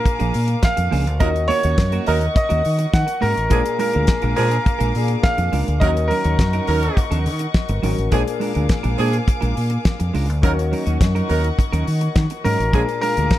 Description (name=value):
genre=disco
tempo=104 BPM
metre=4/4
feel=straight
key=Eb minor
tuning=A4 = 443 Hz
part: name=warm baby grand piano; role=melody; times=0.0-7.8, 12.4-13.4 s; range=Bb4 to Gb5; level=-22 LUFS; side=equal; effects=none
part: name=clean electric guitar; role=accompaniment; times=0.0-13.4 s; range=F3 to Db5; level=-27 LUFS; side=right 6 dB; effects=none
part: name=warm concert grand piano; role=accompaniment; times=0.0-13.4 s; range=Bb2 to Ab4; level=-28 LUFS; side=left 7 dB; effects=none
part: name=dark studio string section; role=sustained chords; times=0.0-13.4 s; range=Bb4 to D6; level=-30 LUFS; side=left 1 dB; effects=none
part: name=damped 70s drum kit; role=drums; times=0.1-13.4 s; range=hi-hat, kick drum, snare drum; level=-20 LUFS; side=equal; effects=none
part: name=fingered electric bass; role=bass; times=0.2-13.3 s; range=G1 to Eb3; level=-20 LUFS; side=equal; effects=none
part: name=warm horn section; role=stabs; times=1.2-12.8 s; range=F3 to Bb4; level=-25 LUFS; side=right 4 dB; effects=none
room=studio reverb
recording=dark, warm production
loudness=-16 LUFS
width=side -14 dB against mid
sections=0.0-13.4 A section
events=none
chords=0.0 Bb7; 1.2 Ebm7; 3.5 Bb7; 5.8 Ebm7; 8.1 Bb7; 10.4 Ebm7; 12.7 Bb7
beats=0.06 0.63 | 1.21 1.78 2.36 2.93 | 3.51 4.08 4.66 5.24 | 5.81 6.39 6.97 7.54 | 8.12 8.70 9.28 9.85 | 10.43 11.01 11.58 12.16 | 12.74 13.31